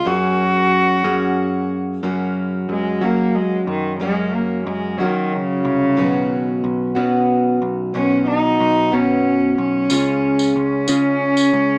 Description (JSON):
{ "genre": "acoustic folk duo or small band", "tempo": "61 BPM (dotted quarters)", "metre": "6/8", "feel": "straight", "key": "F# major", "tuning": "A4 = 440 Hz", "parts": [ { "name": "warm cello", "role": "melody", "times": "0.0-11.8 s", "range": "C#3 to F#4", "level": "-20 LUFS", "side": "equal", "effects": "plate reverb" }, { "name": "picked steel-string acoustic guitar", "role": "accompaniment", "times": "0.0-11.8 s", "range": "F#2 to G#4", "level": "-25 LUFS", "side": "equal", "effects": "plate reverb" }, { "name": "picked electric bass", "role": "bass", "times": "0.1-11.8 s", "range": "B1 to F#3", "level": "-25 LUFS", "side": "equal", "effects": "none" }, { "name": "tambourine", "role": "percussion", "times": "9.9-11.5 s", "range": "none", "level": "-28 LUFS", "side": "equal", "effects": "none" } ], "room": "wet small room ambience, RT60 0.5 s", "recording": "rough home demo mix, small speaker sound", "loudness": "-18 LUFS", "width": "mono", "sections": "0.0-2.0 A section; 2.0-11.8 B section", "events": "cello solo 2.0-11.8", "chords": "0.1 F#add9; 2.0 F#; 6.0 Badd9; 9.9 C#" }